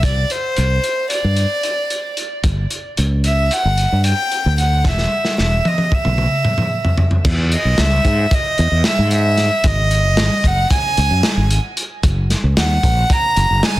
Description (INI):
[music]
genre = progressive instrumental, band music in an uneven meter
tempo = 225 BPM (eighths)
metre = 9/8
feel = straight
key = E lydian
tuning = A4 = 440 Hz
[part]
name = warm violin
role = melody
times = 0.0-13.8 s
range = C5 to A#5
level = -19 LUFS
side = right 1 dB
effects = tape echo
[part]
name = fretless electric bass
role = bass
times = 0.0-13.8 s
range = E1 to G#2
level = -16 LUFS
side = equal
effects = none
[part]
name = crunchy breakbeat drum kit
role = drums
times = 0.0-13.8 s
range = crash cymbal, hi-hat, kick drum, snare drum, toms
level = -18 LUFS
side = equal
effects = none
[sound]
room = light reverb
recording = dense, heavily limited modern master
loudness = -14 LUFS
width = side -16 dB against mid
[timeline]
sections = 0.0-7.3 A section; 7.3-13.8 B section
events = drum fill 4.9-7.3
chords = 0.0 Csus2; 2.4 G5; 4.9 E5; 7.3 E; 9.7 G#5; 12.0 F#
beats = | 0.04 0.31 0.57 0.84 1.11 1.38 1.65 1.91 2.18 | 2.45 2.71 2.98 3.25 3.52 3.79 4.05 4.32 4.59 | 4.86 5.12 5.39 5.66 5.92 6.19 6.46 6.72 6.99 | 7.26 7.52 7.79 8.06 8.32 8.59 8.85 9.12 9.39 | 9.65 9.92 10.18 10.45 10.71 10.98 11.24 11.51 11.78 | 12.04 12.31 12.57 12.84 13.10 13.37 13.63